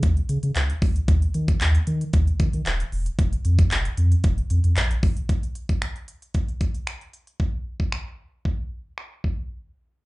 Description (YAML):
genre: dance-pop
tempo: 114 BPM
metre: 4/4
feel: straight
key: unclear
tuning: A4 = 441 Hz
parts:
  - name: warm sub bass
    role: bass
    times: 0.0-5.2 s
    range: Eb1 to Eb3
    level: -21 LUFS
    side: equal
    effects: sidechain pumping
  - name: pop drum kit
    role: drums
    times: 0.0-9.4 s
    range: finger snaps, handclaps, hi-hat, kick drum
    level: -22 LUFS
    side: equal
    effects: none
room: little or no reverb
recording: live gig heard through the venue's PA, club reverb, low-pass filter, nothing above 10.7 kHz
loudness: -21 LUFS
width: side -21 dB against mid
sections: 0.0-5.3 A section; 5.3-9.5 B section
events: drop 0.0-5.3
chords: none